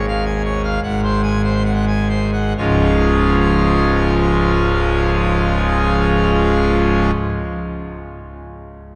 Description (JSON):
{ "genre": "classical, organ toccata", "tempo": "63-84 BPM", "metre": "4/4", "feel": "straight", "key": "Db major", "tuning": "A4 = 440 Hz", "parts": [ { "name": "pipe organ, full organ", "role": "solo", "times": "0.0-7.1 s", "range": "Db1 to Ab5", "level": "-17 LUFS", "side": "equal", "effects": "none" } ], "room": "wet cathedral reverb, RT60 5.1 s", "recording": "dark, warm production", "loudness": "-17 LUFS", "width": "mono", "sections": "0.0-2.6 A section; 2.6-6.3 B section", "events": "slowing down 0.0-2.6", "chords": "0.0 Db/Ab; 0.8 Ab7; 2.6 Db" }